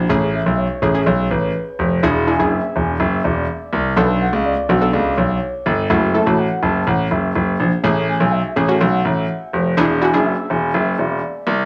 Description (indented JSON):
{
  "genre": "dance-pop",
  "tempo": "124 BPM",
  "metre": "4/4",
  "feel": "straight",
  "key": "A major",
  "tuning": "A4 = 439 Hz",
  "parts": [
    { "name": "clear concert grand piano", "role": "bass", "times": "0.0-11.7 s", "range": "E1 to C#2", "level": "-19 LUFS", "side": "equal", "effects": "none" },
    { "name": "glassy wavetable pluck", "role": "accompaniment", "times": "0.1-10.7 s", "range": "A3 to A4", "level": "-23 LUFS", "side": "equal", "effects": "chorus, cassette tape" },
    { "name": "mellow horn-like synth lead", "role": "melody", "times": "0.3-11.5 s", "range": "B4 to A5", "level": "-27 LUFS", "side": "equal", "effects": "chorus, cassette tape, analog delay" }
  ],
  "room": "light reverb, studio reverb",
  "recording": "home recording on cassette, high-pass filter, small room ambience",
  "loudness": "-18 LUFS",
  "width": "mono",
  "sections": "0.1-11.7 A section",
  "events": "build-up 0.1-11.7",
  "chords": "0.1 Amaj7; 2.0 E7; 4.0 Bm7; 5.9 F#m7; 7.8 Amaj7; 9.8 E7",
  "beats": "| 0.10 0.58 1.06 1.55 | 2.03 2.52 3.00 3.48 | 3.97 4.45 4.94 5.42 | 5.90 6.39 6.87 7.36 | 7.84 8.32 8.81 9.29 | 9.78 10.26 10.74 11.23"
}